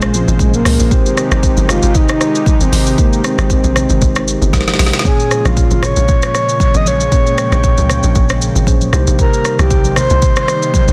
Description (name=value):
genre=amapiano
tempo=116 BPM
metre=4/4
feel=swing 55% on 16ths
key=Bb dorian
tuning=A4 = 441 Hz
part: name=breathy flute-like synth lead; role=melody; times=0.0-10.9 s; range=F3 to Eb5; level=-20 LUFS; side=equal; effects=chorus, tape echo
part: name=mellow tine electric piano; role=accompaniment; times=0.0-10.9 s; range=Bb2 to Db5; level=-22 LUFS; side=equal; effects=none
part: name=warm analog pad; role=sustained chords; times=0.0-10.9 s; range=C3 to G5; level=-24 LUFS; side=equal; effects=chorus, sidechain pumping
part: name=hollow log drum bass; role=bass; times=0.0-10.9 s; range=G1 to Db2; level=-17 LUFS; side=equal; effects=none
part: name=afro-pop drum kit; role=drums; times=0.0-10.9 s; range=hi-hat, kick drum, rim click, shaker, snare drum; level=-17 LUFS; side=equal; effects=none
part: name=congas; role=percussion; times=0.4-10.9 s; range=none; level=-26 LUFS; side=equal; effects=none
room=light reverb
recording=dense, heavily limited modern master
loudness=-13 LUFS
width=mono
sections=0.0-5.1 A section; 5.1-10.9 B section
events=drop 0.0-5.1; drum fill 4.5-5.1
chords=0.0 Bbm7; 0.9 Abmaj7; 5.1 Bbm7; 8.9 Cm7